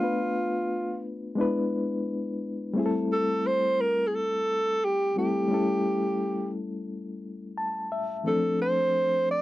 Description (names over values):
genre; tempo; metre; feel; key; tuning
soul; 87 BPM; 4/4; straight; unclear; A4 = 442 Hz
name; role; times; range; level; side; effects
breathy alto saxophone; melody; 0.0-9.4 s; F4 to D5; -25 LUFS; right 1 dB; none
barky reed electric piano; accompaniment; 0.0-9.4 s; E3 to A5; -28 LUFS; left 2 dB; overdrive, fast tremolo
room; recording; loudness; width
light reverb; dry, close 1970s-style studio recording; -25 LUFS; side -16 dB against mid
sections
0.0-9.4 A section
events
reed electric piano fill 7.2-8.3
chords
0.0 Bm7b5; 1.4 E7; 2.8 Am7; 5.5 A7; 8.3 Dm7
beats
| 0.00 0.69 1.38 2.07 | 2.76 3.44 4.13 4.82 | 5.51 6.20 6.89 7.58 | 8.26 8.95